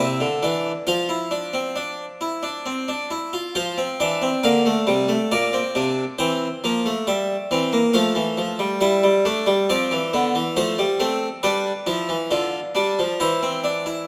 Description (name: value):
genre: classical, baroque-style 3-part fugue for harpsichord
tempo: 68 BPM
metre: 3/4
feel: straight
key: F major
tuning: A4 = 440 Hz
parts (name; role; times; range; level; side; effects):
- harpsichord; solo; 0.0-14.1 s; Bb2 to F5; -22 LUFS; equal; none
room: wet recital hall reverb, RT60 1.6 s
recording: none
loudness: -22 LUFS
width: mono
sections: 0.0-3.6 A section; 3.6-14.1 B section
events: none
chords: 0.0 C; 0.9 F5; 3.6 F; 5.3 Bbadd9; 6.2 C7/E; 8.0 F; 8.8 C/G; 10.6 Fadd9; 11.4 G7; 13.2 C/E